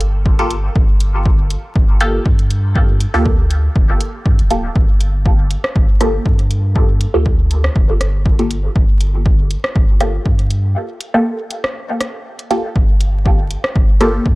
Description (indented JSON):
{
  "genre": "dub techno",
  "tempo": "120 BPM",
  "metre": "4/4",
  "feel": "swing 54% on 16ths",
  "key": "G minor",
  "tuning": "A4 = 440 Hz",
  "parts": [
    { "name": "soft dub sub bass", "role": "bass", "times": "0.0-14.4 s", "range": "D1 to G2", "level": "-17 LUFS", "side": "equal", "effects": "sidechain pumping" },
    { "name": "punchy analog drum machine", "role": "drums", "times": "0.0-14.1 s", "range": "hi-hat, rim click", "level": "-22 LUFS", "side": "equal", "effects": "none" },
    { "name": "electronic kick drum", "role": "drums", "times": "0.3-14.4 s", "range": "none", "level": "-14 LUFS", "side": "equal", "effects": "none" },
    { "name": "filtered dub chord stab", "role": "stabs", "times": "0.4-14.3 s", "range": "Bb3 to A4", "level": "-20 LUFS", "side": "equal", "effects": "phaser, sidechain pumping, dub echo" }
  ],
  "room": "little or no reverb",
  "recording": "dry, gritty hardware recording, vinyl crackle",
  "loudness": "-13 LUFS",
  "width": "side -21 dB against mid",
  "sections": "0.0-14.4 A section",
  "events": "filter sweep on synth stab 0.0-14.4; break 10.8-12.8",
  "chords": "0.0 Gm9",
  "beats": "0.26 | 0.76 1.25 1.75 2.25 | 2.75 3.25 3.75 4.25 | 4.75 5.25 5.75 6.25 | 6.75 7.25 7.75 8.26 | 8.76 9.26 9.76 10.26 | 10.76 11.26 11.76 12.26 | 12.76 13.26 13.76 14.26"
}